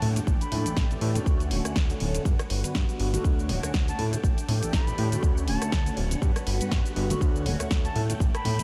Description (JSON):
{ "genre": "filtered disco house", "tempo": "121 BPM", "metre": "4/4", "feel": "swing 57% on 16ths", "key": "D major", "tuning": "A4 = 440 Hz", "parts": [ { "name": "breathy bright jazz flute", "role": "melody", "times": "0.0-0.9, 3.9-8.6 s", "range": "A5 to B5", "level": "-40 LUFS", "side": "equal", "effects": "vintage 12-bit sampler grit, sidechain pumping, low-pass filter, tape echo" }, { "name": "string machine, full ensemble", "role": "sustained chords", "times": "0.0-8.6 s", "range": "D3 to G5", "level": "-40 LUFS", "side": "equal", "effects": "phaser, ensemble chorus, vintage 12-bit sampler grit, sidechain pumping, low-pass filter" }, { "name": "fat analog bass", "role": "bass", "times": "0.0-8.6 s", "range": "D1 to A2", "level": "-30 LUFS", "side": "equal", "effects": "sidechain pumping, low-pass filter" }, { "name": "house drum kit", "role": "drums", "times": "0.0-8.6 s", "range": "hi-hat, rim click, shaker, snare drum", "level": "-36 LUFS", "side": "equal", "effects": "sidechain pumping on hats, studio reverb, sidechain pumping on perc" }, { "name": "tube shaker and congas", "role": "percussion", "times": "0.0-8.6 s", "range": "none", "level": "-39 LUFS", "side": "equal", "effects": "none" }, { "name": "mellow synth brass", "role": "accompaniment", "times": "0.3-8.6 s", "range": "D3 to A4", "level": "-36 LUFS", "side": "equal", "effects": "chorus, phaser, sidechain pumping, low-pass filter" }, { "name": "electronic kick drum", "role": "drums", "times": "0.3-8.3 s", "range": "none", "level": "-27 LUFS", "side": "equal", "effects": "studio reverb" } ], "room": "light reverb", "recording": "none", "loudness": "-26 LUFS", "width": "mono", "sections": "0.0-8.6 A section", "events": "none", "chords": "0.0 A7sus4; 1.3 Dmaj7; 2.3 Gmaj7; 3.2 Dmaj7; 4.0 A7sus4; 5.2 Dmaj7; 6.2 Gmaj7; 7.2 Dmaj7; 8.0 A7sus4", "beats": "| 0.27 0.77 1.26 1.76 | 2.25 2.75 3.24 3.74 | 4.24 4.73 5.23 5.72 | 6.22 6.71 7.21 7.71 | 8.20" }